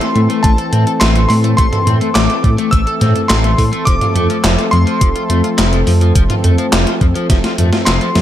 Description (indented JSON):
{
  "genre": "synthwave",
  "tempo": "105 BPM",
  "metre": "4/4",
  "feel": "straight",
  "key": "unclear",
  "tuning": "A4 = 440 Hz",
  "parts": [
    { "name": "clear electric grand piano", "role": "melody", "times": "0.0-8.2 s", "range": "A5 to E6", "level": "-19 LUFS", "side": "left 1 dB", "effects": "digital delay" },
    { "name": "warm analog pad", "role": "sustained chords", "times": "0.0-8.2 s", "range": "E3 to A4", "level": "-19 LUFS", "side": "left 1 dB", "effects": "chorus, sidechain pumping" },
    { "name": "electric guitar at the edge of break-up", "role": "riff", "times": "0.0-8.2 s", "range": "F3 to A4", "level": "-22 LUFS", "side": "left 4 dB", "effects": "wide subtle chorus, digital delay" },
    { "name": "gated 80s digital drum machine", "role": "drums", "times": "0.0-8.2 s", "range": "handclaps, hi-hat, snare drum, toms", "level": "-17 LUFS", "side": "equal", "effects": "gated reverb, gated reverb snare, overdrive" },
    { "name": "dark detuned saw bass", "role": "bass", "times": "0.2-8.2 s", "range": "F1 to A2", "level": "-14 LUFS", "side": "equal", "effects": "none" },
    { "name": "electronic kick drum", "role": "drums", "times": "0.4-7.4 s", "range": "none", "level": "-13 LUFS", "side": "equal", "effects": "overdrive" }
  ],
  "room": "little or no reverb",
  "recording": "none",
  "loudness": "-10 LUFS",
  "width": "side -11 dB against mid",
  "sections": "0.0-8.2 A section",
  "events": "drum fill 7.3-8.2; kick drops out 7.9-8.2",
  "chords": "0.0 Am; 3.9 F"
}